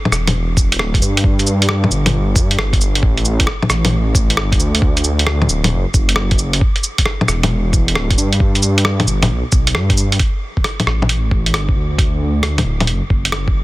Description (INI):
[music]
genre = future garage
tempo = 134 BPM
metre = 4/4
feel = swing 67% on 16ths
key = unclear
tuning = A4 = 440 Hz
[part]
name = swelling detuned saw bass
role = bass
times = 0.1-13.6 s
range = D1 to G2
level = -17 LUFS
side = equal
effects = tube saturation, sidechain pumping
[part]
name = lo-fi sampler-style drum kit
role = drums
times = 0.1-13.4 s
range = bongos, cabasa, hi-hat, rim click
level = -18 LUFS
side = equal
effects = soft clipping on snare
[part]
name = electronic kick drum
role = drums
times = 0.6-13.5 s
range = none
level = -16 LUFS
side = equal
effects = none
[sound]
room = little or no reverb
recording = dense, heavily limited modern master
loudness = -13 LUFS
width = side -19 dB against mid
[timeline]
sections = 0.0-10.2 A section; 10.2-13.6 B section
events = none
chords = none